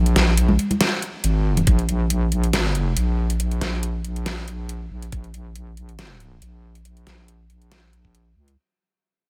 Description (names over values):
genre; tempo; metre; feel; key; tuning
deep dubstep; 139 BPM; 4/4; swing 54% on 16ths, half-time; Bb minor; A4 = 440 Hz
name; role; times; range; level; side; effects
wobble bass; bass; 0.0-8.6 s; Ab1 to Db2; -24 LUFS; equal; chorus
dubstep drum kit; drums; 0.1-8.6 s; hi-hat, snare drum; -27 LUFS; equal; none
congas; percussion; 0.5-1.7 s; none; -27 LUFS; equal; dub echo
electronic kick drum; drums; 1.7-1.8, 5.1-5.2, 8.0-8.1 s; none; -21 LUFS; equal; none
room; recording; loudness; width
little or no reverb; none; -22 LUFS; mono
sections
0.0-8.6 A section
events
fade-out 0.0-8.6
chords
none